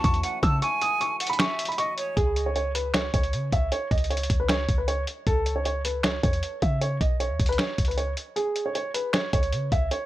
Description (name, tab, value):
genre	hip hop, trap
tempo	155 BPM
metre	4/4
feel	half-time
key	unclear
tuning	A4 = 440 Hz
part	dark baby grand piano	melody	0.0-10.1 s	G#4 to E6	-28 LUFS	right 1 dB	low-pass filter, tape echo
part	concert flute	second line	0.0-2.2 s	C#5 to A5	-30 LUFS	right 3 dB	tape echo
part	felt-muted upright piano	accompaniment	0.0-2.2 s	E3 to C#5	-42 LUFS	left 4 dB	low-pass filter
part	clean 808-style bass	bass	0.0-9.9 s	B1 to C#3	-27 LUFS	equal	none
part	lo-fi sampler-style drum kit	drums	0.0-10.0 s	finger snaps, hi-hat, kick drum, snare drum	-26 LUFS	equal	none
room	studio reverb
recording	dry, gritty hardware recording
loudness	-23 LUFS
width	side -15 dB against mid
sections	0.0-2.2 A section; 2.2-10.1 B section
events	break 0.6-2.2; kick muted 8.4-8.8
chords	0.0 F#m7; 2.2 N.C.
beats	0.23 | 0.62 1.01 1.40 1.78 | 2.17 2.56 2.94 3.33 | 3.72 4.11 4.49 4.88 | 5.27 5.65 6.04 6.43 | 6.82 7.20 7.59 7.98 | 8.36 8.75 9.14 9.53 | 9.91